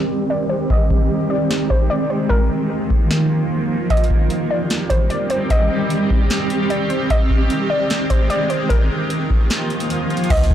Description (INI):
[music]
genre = hip hop, atmospheric cloud-rap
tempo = 150 BPM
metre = 4/4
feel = half-time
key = unclear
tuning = A4 = 445 Hz
[part]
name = warbly dusty pluck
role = melody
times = 0.0-10.5 s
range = Bb4 to Eb5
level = -23 LUFS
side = equal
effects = chorus, low-pass filter, digital delay
[part]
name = granular cloud pad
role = sustained chords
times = 0.0-10.5 s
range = Eb3 to G4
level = -19 LUFS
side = right 1 dB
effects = built-in reverb, low-pass filter
[part]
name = booming analog drum machine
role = drums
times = 0.7-10.5 s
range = crash cymbal, hi-hat, kick drum, snare drum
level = -17 LUFS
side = equal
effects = none
[part]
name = soft 808-style bass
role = bass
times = 10.3-10.5 s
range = C2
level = -16 LUFS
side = equal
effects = none
[sound]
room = light reverb, digital ambience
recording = blown-out, overdriven recording, overdrive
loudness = -16 LUFS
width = side -10 dB against mid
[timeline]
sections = 0.0-10.3 A section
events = break 0.0-3.9; filter sweep 0.0-10.3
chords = 0.0 Cm; 0.7 Abmaj7; 2.3 Bbsus4; 3.9 Cm; 7.1 Abmaj7; 8.7 Bbsus4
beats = 0.30 | 0.70 1.10 1.50 1.90 | 2.30 2.70 3.10 3.50 | 3.90 4.30 4.70 5.10 | 5.50 5.90 6.30 6.70 | 7.10 7.50 7.90 8.30 | 8.70 9.10 9.50 9.90 | 10.30